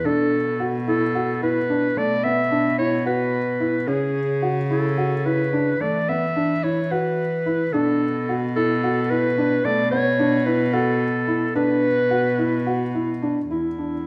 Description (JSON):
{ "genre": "contemporary instrumental, chamber music in an uneven meter", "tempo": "219 BPM (eighths)", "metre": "7/8", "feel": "straight", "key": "unclear", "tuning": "A4 = 440 Hz", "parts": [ { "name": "breathy clarinet", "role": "melody", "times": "0.0-14.1 s", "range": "E4 to E5", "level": "-25 LUFS", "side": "equal", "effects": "none" }, { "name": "warm cello", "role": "bass", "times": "0.0-14.1 s", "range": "E2 to E3", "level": "-28 LUFS", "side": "equal", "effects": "none" }, { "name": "felt-muted upright piano", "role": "arpeggios", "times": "0.1-13.9 s", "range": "A3 to F#4", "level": "-26 LUFS", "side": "equal", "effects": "none" } ], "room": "moderate recital hall reverb, RT60 1.4 s", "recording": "none", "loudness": "-21 LUFS", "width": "mono", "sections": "0.0-13.5 A section", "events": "none", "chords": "0.0 Bm7; 2.0 E5/B; 3.9 C#m7; 5.8 E5; 7.7 Bm7; 9.7 Esus4/B; 11.6 Bm; 13.5 E7(no3)" }